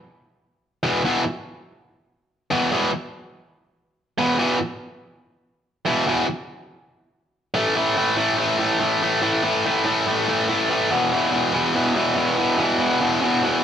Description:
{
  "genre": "rock",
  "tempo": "143 BPM",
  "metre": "4/4",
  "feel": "straight",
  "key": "unclear",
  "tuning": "A4 = 440 Hz",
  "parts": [
    { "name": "tight distorted guitar", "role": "solo", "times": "0.8-13.6 s", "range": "E2 to A3", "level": "-18 LUFS", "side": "equal", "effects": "distortion" }
  ],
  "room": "moderate large studio reverb, RT60 1.3 s",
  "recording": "band playing live in one room",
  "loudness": "-19 LUFS",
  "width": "side -8 dB against mid",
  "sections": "0.0-7.6 A section; 7.6-13.6 B section",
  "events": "none",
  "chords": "0.0 E5; 7.6 A5; 10.9 E5"
}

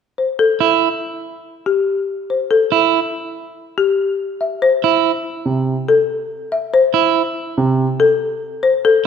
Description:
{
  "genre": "classical, minimalist pattern music",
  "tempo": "142 BPM",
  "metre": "5/4",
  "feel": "straight",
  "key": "C major",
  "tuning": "A4 = 441 Hz",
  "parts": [
    { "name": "folk marimba with medium hard mallets", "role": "melody", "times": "0.2-9.1 s", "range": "G4 to E5", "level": "-15 LUFS", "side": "left 4 dB", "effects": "none" },
    { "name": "electric guitar at the edge of break-up", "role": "arpeggios", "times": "0.6-7.2 s", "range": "E4", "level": "-16 LUFS", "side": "right 9 dB", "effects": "none" },
    { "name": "warm concert grand piano", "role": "accompaniment", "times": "5.5-7.9 s", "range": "C3", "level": "-18 LUFS", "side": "right 3 dB", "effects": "none" }
  ],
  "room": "moderate scoring stage reverb, RT60 1.8 s",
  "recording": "none",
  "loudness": "-15 LUFS",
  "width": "side -7 dB against mid",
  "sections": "0.0-9.1 A section",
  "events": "none",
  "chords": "0.0 C"
}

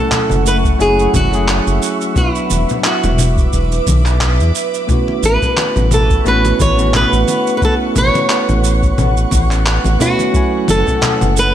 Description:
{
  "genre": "sunset chillout",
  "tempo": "88 BPM",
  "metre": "4/4",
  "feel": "swing 55% on 16ths",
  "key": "A major",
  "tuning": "A4 = 440 Hz",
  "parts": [
    { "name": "flamenco guitar", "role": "melody", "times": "0.0-11.5 s", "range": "E4 to C#5", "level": "-17 LUFS", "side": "equal", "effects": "tape echo" },
    { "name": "bell-like tine electric piano", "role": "accompaniment", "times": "0.0-11.5 s", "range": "F#3 to G#5", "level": "-20 LUFS", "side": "equal", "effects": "auto-pan, digital delay" },
    { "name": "ethereal airy pad", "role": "sustained chords", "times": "0.0-11.5 s", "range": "A3 to E6", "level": "-21 LUFS", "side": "right 2 dB", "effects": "ensemble chorus, built-in reverb, phaser" },
    { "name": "electronic handclaps, congas and cabasa", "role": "drums", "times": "0.1-11.5 s", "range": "none", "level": "-19 LUFS", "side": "equal", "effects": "none" },
    { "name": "round analog bass", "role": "bass", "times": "0.3-11.5 s", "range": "E1 to E2", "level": "-15 LUFS", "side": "equal", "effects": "none" },
    { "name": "congas", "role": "percussion", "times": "0.3-11.3 s", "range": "none", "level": "-23 LUFS", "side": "left 3 dB", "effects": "none" },
    { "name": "electronic kick drum", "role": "drums", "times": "0.6-11.0 s", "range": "none", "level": "-17 LUFS", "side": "equal", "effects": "none" }
  ],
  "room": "light reverb",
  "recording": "none",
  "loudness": "-11 LUFS",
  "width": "side -11 dB against mid",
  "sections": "0.0-11.5 A section",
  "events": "none",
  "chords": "0.0 F#m7; 2.2 E5; 4.9 A69; 10.3 F#m7"
}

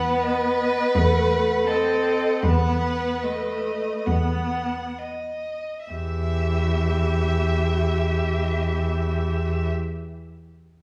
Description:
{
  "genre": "classical, slow romantic movement for string quartet",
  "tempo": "30-44 BPM",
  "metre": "4/4",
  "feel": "rubato",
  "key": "E minor",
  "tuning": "A4 = 440 Hz",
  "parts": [
    { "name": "warm violin", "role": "melody", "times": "0.0-9.7 s", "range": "D#5 to F#5", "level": "-34 LUFS", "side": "equal", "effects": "none" },
    { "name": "rich violin", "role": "second line", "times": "0.0-9.7 s", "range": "A4 to E5", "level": "-28 LUFS", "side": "equal", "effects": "none" },
    { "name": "rich viola", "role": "accompaniment", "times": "0.0-9.7 s", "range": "A3 to G4", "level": "-30 LUFS", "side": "equal", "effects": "none" },
    { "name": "rich cello", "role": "bass", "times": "0.0-9.7 s", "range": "E2", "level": "-26 LUFS", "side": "equal", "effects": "none" }
  ],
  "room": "wet recital hall reverb, RT60 1.6 s",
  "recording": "studio reverb",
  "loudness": "-23 LUFS",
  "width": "mono",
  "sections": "0.0-5.9 A section; 5.9-10.8 B section",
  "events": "slowing down 0.0-5.9",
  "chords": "0.0 B/E; 5.9 Em"
}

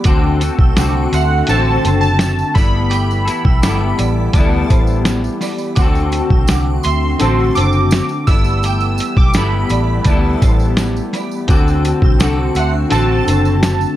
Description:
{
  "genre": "indie pop, bedroom pop",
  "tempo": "84 BPM",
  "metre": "4/4",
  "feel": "straight",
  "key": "G major",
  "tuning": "A4 = 441 Hz",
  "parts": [
    { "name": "clean electric guitar", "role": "accompaniment", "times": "0.0-14.0 s", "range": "D3 to A4", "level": "-19 LUFS", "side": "left 3 dB", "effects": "ensemble chorus, warbly pitch drift" },
    { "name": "hollow soft pad", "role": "sustained chords", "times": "0.0-14.0 s", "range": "D3 to G4", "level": "-27 LUFS", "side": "right 2 dB", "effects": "chorus, phaser" },
    { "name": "lo-fi sampler-style drum kit", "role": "drums", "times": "0.0-13.8 s", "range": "hi-hat, kick drum, snare drum", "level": "-14 LUFS", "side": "equal", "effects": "none" },
    { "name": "shimmering bell with halo", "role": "second line", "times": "0.1-13.5 s", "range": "C5 to E6", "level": "-26 LUFS", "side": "right 4 dB", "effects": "ensemble chorus, tremolo, lush chorus, analog delay" },
    { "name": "vintage muted fingered electric bass", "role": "bass", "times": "0.1-13.8 s", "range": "F#1 to D2", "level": "-17 LUFS", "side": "equal", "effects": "none" },
    { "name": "tambourine", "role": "percussion", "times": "0.1-14.0 s", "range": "none", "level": "-34 LUFS", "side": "right 7 dB", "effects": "none" },
    { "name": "warm analog keys", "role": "melody", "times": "1.1-13.9 s", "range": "F#5 to E6", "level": "-20 LUFS", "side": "right 2 dB", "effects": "lush chorus" }
  ],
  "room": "little or no reverb",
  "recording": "dark, warm production",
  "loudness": "-12 LUFS",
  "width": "side -13 dB against mid",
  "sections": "0.0-14.0 A section",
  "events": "none",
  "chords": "0.1 D7; 2.6 G69; 5.8 D7; 8.3 G69; 11.5 D7"
}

